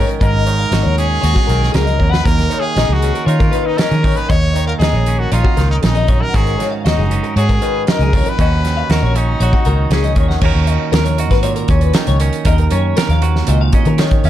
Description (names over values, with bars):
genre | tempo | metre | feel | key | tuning
math rock and midwest emo | 118 BPM | 4/4 | straight | Eb minor | A4 = 440 Hz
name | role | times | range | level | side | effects
brilliant trumpet | melody | 0.0-10.2 s | Eb4 to Db5 | -21 LUFS | equal | none
clean electric guitar | accompaniment | 0.0-14.3 s | Eb2 to Bb4 | -21 LUFS | right 8 dB | none
twelve-string electric guitar | arpeggios | 0.0-14.3 s | Gb4 to Gb5 | -22 LUFS | left 10 dB | ensemble chorus
vintage muted fingered electric bass | bass | 0.0-14.3 s | Gb1 to Eb3 | -15 LUFS | equal | none
loose indie drum kit | drums | 0.1-14.3 s | crash cymbal, hi-hat, kick drum, snare drum | -17 LUFS | equal | none
room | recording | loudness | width
little or no reverb | dark, warm production | -12 LUFS | side -12 dB against mid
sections
0.0-10.4 A section; 10.4-14.3 B section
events
drum fill 2.0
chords
0.0 Ab7sus4; 2.2 Ebm7; 6.3 Ab7sus4; 8.4 Ebm7